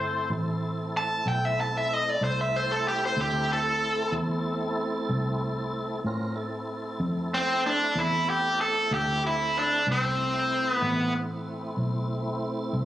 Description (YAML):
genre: blues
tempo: 63 BPM (dotted quarters)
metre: 12/8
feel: straight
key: A minor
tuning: A4 = 439 Hz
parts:
  - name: overdriven electric guitar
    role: melody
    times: 0.0-11.1 s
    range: C4 to A5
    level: -25 LUFS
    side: equal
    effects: none
  - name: tonewheel organ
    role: sustained chords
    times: 0.0-12.8 s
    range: A3 to Bb4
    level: -32 LUFS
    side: equal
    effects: chorus vibrato, slow rotary speaker
  - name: vintage muted fingered electric bass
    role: bass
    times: 0.0-12.8 s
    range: G1 to A2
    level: -31 LUFS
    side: equal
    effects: none
room: light reverb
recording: recorded on a phone in the room, club reverb, compression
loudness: -25 LUFS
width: side -13 dB against mid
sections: 0.0-6.0 A section; 6.0-12.8 B section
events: overdriven electric guitar solo 0.0-6.0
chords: 0.0 Am